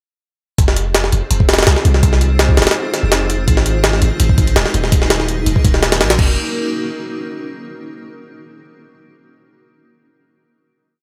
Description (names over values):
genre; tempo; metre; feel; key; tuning
drum and bass, jungle; 166 BPM; 4/4; straight; F phrygian; A4 = 445 Hz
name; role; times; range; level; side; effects
long sustained 808-style bass; bass; 0.6-6.4 s; Eb1 to C2; -18 LUFS; equal; tube saturation
jungle sampler-style drum kit; drums; 0.6-6.3 s; crash cymbal, hi-hat, kick drum, snare drum; -16 LUFS; equal; none
room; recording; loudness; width
light reverb; none; -14 LUFS; mono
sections
0.6-6.4 drop; 6.4-7.8 final hit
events
drop 0.6-6.4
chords
none